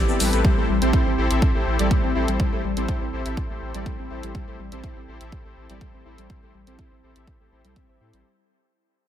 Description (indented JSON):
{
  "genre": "progressive house",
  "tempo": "123 BPM",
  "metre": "4/4",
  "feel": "straight",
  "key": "unclear",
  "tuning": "A4 = 441 Hz",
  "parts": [
    { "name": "soft round pluck", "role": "arpeggios", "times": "0.0-8.2 s", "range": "G3 to C5", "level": "-28 LUFS", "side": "equal", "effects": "wide subtle chorus, sidechain pumping, dub echo" },
    { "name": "soft supersaw", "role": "stabs", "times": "0.0-8.2 s", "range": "C4 to E5", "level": "-28 LUFS", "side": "left 3 dB", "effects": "sidechain pumping, low-pass filter, dub echo" },
    { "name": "round analog bass", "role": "bass", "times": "0.0-8.2 s", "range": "G1 to A2", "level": "-27 LUFS", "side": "equal", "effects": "sidechain pumping" },
    { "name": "electronic hi-hat", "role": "drums", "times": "0.2-8.2 s", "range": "none", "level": "-30 LUFS", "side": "right 1 dB", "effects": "none" },
    { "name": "electronic kick drum", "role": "drums", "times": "0.4-7.9 s", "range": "none", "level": "-22 LUFS", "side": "equal", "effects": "none" }
  ],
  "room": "light reverb, digital ambience",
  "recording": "none",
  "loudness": "-20 LUFS",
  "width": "side -10 dB against mid",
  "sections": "0.0-8.2 A section",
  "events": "fade-out 0.0-8.2",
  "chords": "0.4 C6/A"
}